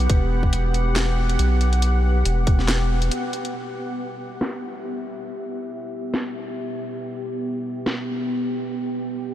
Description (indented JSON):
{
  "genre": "deep dubstep",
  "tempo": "139 BPM",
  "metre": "4/4",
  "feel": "swing 55% on 16ths, half-time",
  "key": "E minor",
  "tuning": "A4 = 440 Hz",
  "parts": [
    { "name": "deep dark ambient pad", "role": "sustained chords", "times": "0.0-9.3 s", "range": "B3 to G5", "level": "-26 LUFS", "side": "equal", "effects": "chorus, built-in reverb" },
    { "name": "soft dub sub bass", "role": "bass", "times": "0.0-3.1 s", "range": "E1 to B1", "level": "-20 LUFS", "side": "equal", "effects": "none" },
    { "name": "garage drum kit", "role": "drums", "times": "0.0-8.0 s", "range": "handclaps, hi-hat, snare drum", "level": "-29 LUFS", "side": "equal", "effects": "low-pass filter on hats, studio ambience, low-pass filter on snare" },
    { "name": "electronic kick drum", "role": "drums", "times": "0.1-2.6 s", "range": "none", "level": "-19 LUFS", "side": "equal", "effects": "studio ambience" }
  ],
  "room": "light reverb",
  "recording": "none",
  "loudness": "-21 LUFS",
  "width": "side -12 dB against mid",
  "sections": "0.0-3.5 A section; 3.5-9.3 B section",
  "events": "drop 0.0-3.5; break 3.1-3.5; filter sweep on drum 3.5-9.3",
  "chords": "0.0 Em"
}